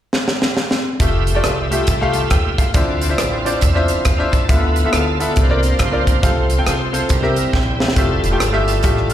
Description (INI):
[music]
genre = uptempo gospel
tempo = 138 BPM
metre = 4/4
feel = swing 62% on 8ths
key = F major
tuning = A4 = 440 Hz
[part]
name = crisp fusion drum kit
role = drums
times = 0.1-9.1 s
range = hi-hat, kick drum, rim click, snare drum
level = -18 LUFS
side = equal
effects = none
[part]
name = bright grand piano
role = accompaniment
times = 1.0-9.1 s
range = C3 to A5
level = -20 LUFS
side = left 2 dB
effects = none
[part]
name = bright tonewheel organ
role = sustained chords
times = 1.0-9.1 s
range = G3 to A5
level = -23 LUFS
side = right 3 dB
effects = slow rotary speaker, overdrive, chorus vibrato
[part]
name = upright bass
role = bass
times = 1.0-9.1 s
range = E1 to E2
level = -19 LUFS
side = equal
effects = none
[sound]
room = little or no reverb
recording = live gig heard through the venue's PA, recital hall reverb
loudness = -14 LUFS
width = side -11 dB against mid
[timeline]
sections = 0.0-1.0 A section; 1.0-8.0 B section; 8.0-9.1 C section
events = drum fill 0.1-1.0, 7.5-8.0; tonewheel organ fill 3.2-4.5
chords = 0.0 N.C.; 1.0 Fmaj9; 2.7 Dm9; 4.5 Dm69; 5.4 C9sus4; 6.2 F/C; 7.1 C7; 8.0 Fmaj9